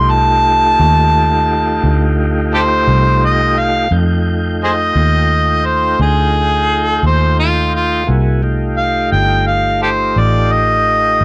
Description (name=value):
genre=slow blues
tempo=58 BPM (dotted quarters)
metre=12/8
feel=straight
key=F mixolydian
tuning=A4 = 440 Hz
part: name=warm harmonica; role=melody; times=0.0-11.2 s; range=F4 to C6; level=-16 LUFS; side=equal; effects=overdrive
part: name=tonewheel organ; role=sustained chords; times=0.0-11.2 s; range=A3 to G5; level=-22 LUFS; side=equal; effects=slow rotary speaker
part: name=vintage muted fingered electric bass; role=bass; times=0.0-11.2 s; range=G1 to F2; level=-18 LUFS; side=equal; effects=none
room=light reverb, studio ambience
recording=dry, gritty hardware recording, transformer saturation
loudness=-14 LUFS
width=mono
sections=0.0-3.9 A section; 3.9-11.2 A section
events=none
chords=0.0 F9